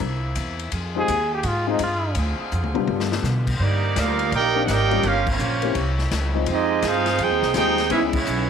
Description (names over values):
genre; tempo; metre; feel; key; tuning
jazz, big band swing; 167 BPM; 4/4; swing 65% on 8ths; C minor; A4 = 440 Hz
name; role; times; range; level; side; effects
bright saxophone section; sustained chords; 0.0-8.5 s; C3 to D5; -32 LUFS; equal; none
upright bass; bass; 0.0-8.5 s; G1 to B2; -25 LUFS; equal; none
swinging big-band drum kit; drums; 0.0-8.4 s; crash cymbal, hi-hat, kick drum, ride cymbal, snare drum, toms; -29 LUFS; left 5 dB; none
dark grand piano; accompaniment; 0.9-8.1 s; G3 to Ab4; -26 LUFS; left 12 dB; none
bright trombone; melody; 1.0-2.2 s; Eb4 to Ab4; -26 LUFS; equal; tape echo
clear trumpet section; melody; 3.6-8.5 s; Bb3 to G5; -23 LUFS; right 2 dB; none
muted trombone section; second line; 3.6-8.5 s; Fb3 to Ab4; -24 LUFS; right 11 dB; none
room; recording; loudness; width
moderate spring reverb, RT60 1.2 s, small room ambience; 1960s-style stereo with parts hard left and right; -19 LUFS; side -7 dB against mid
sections
0.0-3.6 A section; 3.6-8.5 B section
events
trombone solo 0.0-3.6; drum fill 2.5-3.2; band accent 5.2, 8.1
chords
0.0 C7; 0.7 Fm9; 2.2 Dm7b5; 2.9 G7; 3.6 Cm9; 5.0 Gm7b5; 5.8 C7b9; 6.5 Fm9; 7.9 Dbm7